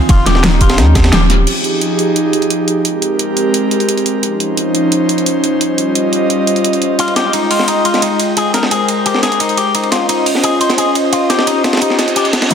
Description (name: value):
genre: liquid drum and bass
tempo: 174 BPM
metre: 4/4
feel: straight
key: unclear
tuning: A4 = 440 Hz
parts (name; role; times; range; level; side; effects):
- airy breathy pad; sustained chords; 0.0-12.5 s; F3 to G5; -14 LUFS; equal; chorus
- electric guitar with an envelope filter; arpeggios; 0.1-1.2, 7.0-12.5 s; Eb4 to C5; -17 LUFS; left 4 dB; warbly pitch drift, ping-pong delay
- warm sub bass; bass; 0.1-1.5 s; Eb1 to Eb2; -12 LUFS; equal; none
- breakbeat sampler-style drum kit; drums; 0.1-1.2, 7.0-12.5 s; hi-hat, ride cymbal, snare drum; -18 LUFS; right 1 dB; high-pass filter on cymbals, high-pass filter on snare, high-pass filter on hats
- electronic kick drum; drums; 0.1-1.0 s; none; -12 LUFS; equal; none
- pop drum kit; drums; 0.1-12.5 s; crash cymbal, hi-hat, snare drum; -18 LUFS; right 1 dB; overdrive
- reverse cymbal and riser; sound effects; 11.9-12.5 s; none; -19 LUFS; right 2 dB; none
room: moderate lush hall reverb, RT60 1.6 s, digital ambience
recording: dense, heavily limited modern master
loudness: -11 LUFS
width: side -7 dB against mid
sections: 0.0-1.5 A section; 1.5-12.5 B section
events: drop 0.0-1.5; kick drops out 1.1-1.5; band accent 1.1; reverse cymbal 11.9-12.5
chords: 0.1 Eb13; 1.5 Fm9; 2.9 Abmaj9; 4.2 Dbmaj9; 5.6 Eb13; 7.0 Fm9; 8.4 Abmaj9; 9.7 Dbmaj9; 11.1 Eb13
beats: | 0.09 0.44 0.78 1.13 | 1.47 1.81 2.16 2.50 | 2.85 3.19 3.54 3.88 | 4.23 4.57 4.92 5.26 | 5.61 5.95 6.30 6.64 | 6.99 7.33 7.68 8.02 | 8.37 8.71 9.06 9.40 | 9.75 10.09 10.44 10.78 | 11.13 11.47 11.81 12.16 | 12.51